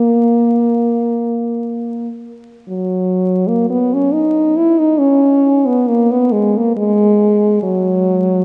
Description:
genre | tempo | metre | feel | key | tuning
classical, free, expressive piece for unaccompanied French horn | 47-71 BPM | 4/4 | rubato | unclear | A4 = 440 Hz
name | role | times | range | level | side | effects
mellow French horn | solo | 0.0-8.4 s | F#3 to E4 | -14 LUFS | equal | none
room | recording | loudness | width
wet church reverb, RT60 3.5 s | dark, warm production, vinyl crackle, nothing above 10.3 kHz | -14 LUFS | mono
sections
0.0-3.2 A section; 3.2-8.4 B section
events
none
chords
none

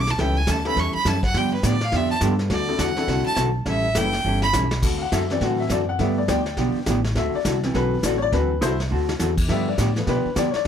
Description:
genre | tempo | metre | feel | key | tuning
country, western swing | 206 BPM | 4/4 | swing 62% on 8ths | D major | A4 = 440 Hz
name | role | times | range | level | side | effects
clear fiddle | melody | 0.0-4.5 s | B4 to D6 | -24 LUFS | right 2 dB | plate reverb
upright bass | bass | 0.0-10.7 s | F#1 to D3 | -24 LUFS | equal | none
vintage brush drum kit | drums | 0.1-10.7 s | brushed snare drum, crash cymbal, hi-hat, kick drum, snare drum | -28 LUFS | equal | none
clear upright piano | accompaniment | 0.2-10.7 s | E3 to G5 | -26 LUFS | left 4 dB | none
vintage hollow-body jazz guitar | accompaniment | 0.2-10.7 s | D3 to A4 | -25 LUFS | right 1 dB | none
room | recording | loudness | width
moderate club reverb, RT60 0.5 s | none | -19 LUFS | side -8 dB against mid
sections
0.0-4.8 A section; 4.8-10.7 A section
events
fiddle solo 0.0-4.8; drum fill 4.3-4.8, 8.9; upright piano solo 4.8-10.7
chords
0.0 A9; 1.3 G9; 2.5 D9; 3.7 A9; 4.8 D9; 6.0 G9; 7.2 D9; 9.5 G9

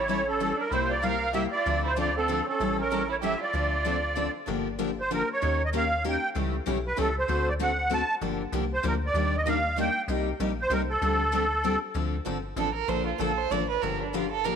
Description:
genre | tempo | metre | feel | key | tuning
acoustic string swing (jazz manouche) | 192 BPM | 3/4 | swing 59% on 8ths | D minor, G minor from 4.5 s | A4 = 435 Hz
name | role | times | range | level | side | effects
musette accordion | melody | 0.0-11.8 s | A4 to A5 | -27 LUFS | right 1 dB | none
warm violin | second line | 0.0-4.3, 12.6-14.6 s | C4 to D5 | -31 LUFS | right 9 dB | none
metallic FM bass | bass | 0.0-14.6 s | G1 to Eb2 | -32 LUFS | left 1 dB | none
picked steel-string acoustic guitar | accompaniment | 0.1-14.6 s | C3 to Bb4 | -32 LUFS | left 14 dB | none
picked steel-string acoustic guitar | accompaniment | 0.1-14.6 s | C3 to C#5 | -35 LUFS | right 11 dB | none
room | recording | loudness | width
moderate plate reverb, RT60 2.7 s | 1960s-style stereo with parts hard left and right | -25 LUFS | side -7 dB against mid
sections
0.0-4.5 A section; 4.5-12.0 B section; 12.0-14.6 C section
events
violin solo 12.0-14.6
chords
0.0 A7; 0.7 C7; 1.7 Dm7; 2.6 A7; 3.5 Dm7; 4.5 Gm7; 5.4 Eb7; 6.3 A7; 7.3 D7; 8.2 Gm7; 9.1 Ebmaj7; 10.1 Cm7; 11.0 D7sus4; 12.0 Dm7; 12.9 Bbmaj7; 13.8 Gm7

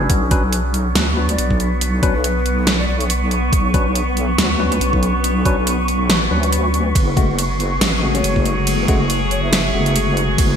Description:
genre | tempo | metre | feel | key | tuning
deep dubstep | 140 BPM | 4/4 | swing 56% on 16ths, half-time | B dorian | A4 = 441 Hz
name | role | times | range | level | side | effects
overtone-sweeping drone | sustained chords | 0.0-10.6 s | F#3 to G#4 | -24 LUFS | equal | chorus, built-in reverb
tine electric piano | stabs | 0.0-10.6 s | C#3 to B4 | -23 LUFS | left 3 dB | medium stereo tremolo, dub echo
deep soft wobble bass | bass | 0.0-10.6 s | F#1 to D2 | -20 LUFS | equal | chorus
dubstep drum kit | drums | 0.1-10.5 s | hi-hat, ride cymbal, snare drum | -20 LUFS | right 1 dB | small room ambience, gated reverb
electronic kick drum | drums | 0.1-10.5 s | none | -17 LUFS | equal | small room ambience
wind-like tuned noise texture | texture | 0.6-10.6 s | B3 to C#6 | -24 LUFS | equal | built-in reverb, ensemble chorus
breathy ney | melody | 1.3-3.0, 8.1-10.0 s | B4 to E5 | -28 LUFS | left 2 dB | dub echo
room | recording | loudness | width
light reverb, digital ambience | bright 1980s-style digital production | -15 LUFS | side -8 dB against mid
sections
0.0-10.6 A section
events
none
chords
0.1 Bmadd9; 7.0 F#madd9

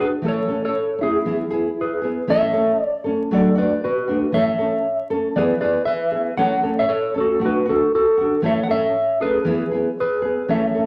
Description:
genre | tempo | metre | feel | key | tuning
highlife | 117 BPM | 4/4 | swing 54% on 16ths | A major | A4 = 444 Hz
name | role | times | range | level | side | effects
mellow electric guitar | melody | 0.0-10.9 s | E4 to F#5 | -22 LUFS | equal | phaser
nylon-string guitar | accompaniment | 0.0-10.9 s | E3 to A4 | -24 LUFS | equal | none
room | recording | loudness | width
wet large studio reverb, RT60 0.8 s | vinyl crackle | -20 LUFS | mono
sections
0.0-2.3 A section; 2.3-10.9 B section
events
none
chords
0.2 A; 1.3 E; 2.3 A; 3.3 D; 4.3 A; 5.4 E; 6.4 A; 7.4 D; 8.4 A; 9.5 E

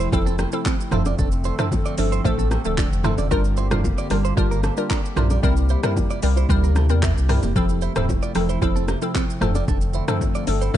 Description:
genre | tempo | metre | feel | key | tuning
afrobeats | 113 BPM | 4/4 | straight | F major | A4 = 441 Hz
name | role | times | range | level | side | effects
glassy wavetable pluck | accompaniment | 0.0-10.8 s | F3 to Bb4 | -25 LUFS | equal | chorus
hollow soft pad | sustained chords | 0.0-10.8 s | C3 to A4 | -30 LUFS | left 1 dB | chorus
direct-recorded clean electric guitar | riff | 0.0-10.7 s | Bb3 to D5 | -30 LUFS | right 9 dB | phaser, digital delay
sub bass with octave | bass | 0.0-10.8 s | D1 to E2 | -21 LUFS | equal | none
deep house drum kit | drums | 0.0-10.8 s | handclaps, hi-hat, kick drum, rim click, shaker, toms | -23 LUFS | equal | overdrive
congas and bongos | percussion | 0.1-10.8 s | none | -29 LUFS | left 1 dB | none
room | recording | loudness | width
little or no reverb | dark, warm production, nothing above 10.7 kHz | -18 LUFS | side -12 dB against mid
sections
0.0-10.8 A section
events
none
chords
0.0 Fmaj7; 3.3 Gm7; 5.4 C7; 7.6 Fmaj7

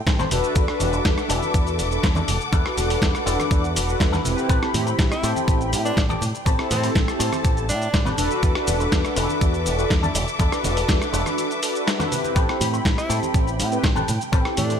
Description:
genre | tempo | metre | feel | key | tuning
nu-disco, nu disco | 122 BPM | 4/4 | straight | A dorian | A4 = 440 Hz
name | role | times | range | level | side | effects
dark studio string section | sustained chords | 0.0-14.8 s | A4 to D6 | -30 LUFS | left 1 dB | sidechain pumping
electric guitar with an envelope filter | riff | 0.1-14.7 s | C4 to D5 | -29 LUFS | left 4 dB | analog chorus, digital delay
fingered electric bass with an envelope filter | bass | 0.1-14.8 s | E1 to A2 | -25 LUFS | equal | none
dusty soul sampler-style drum kit | drums | 0.1-14.8 s | hi-hat, rim click, shaker, snare drum | -27 LUFS | equal | studio reverb
electronic kick drum | drums | 0.1-14.4 s | none | -21 LUFS | equal | studio reverb
congas | percussion | 0.2-14.7 s | none | -32 LUFS | right 4 dB | none
mellow synth brass | accompaniment | 0.3-14.8 s | C4 to B5 | -26 LUFS | equal | chorus, digital delay
clear tenor saxophone | melody | 5.1-8.1, 13.0-14.8 s | C4 to E4 | -31 LUFS | equal | ping-pong delay
room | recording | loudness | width
light reverb | none | -19 LUFS | side -8 dB against mid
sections
0.0-14.8 A section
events
none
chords
0.3 E7sus4; 4.5 Am9; 8.2 E7sus4; 12.4 Am9

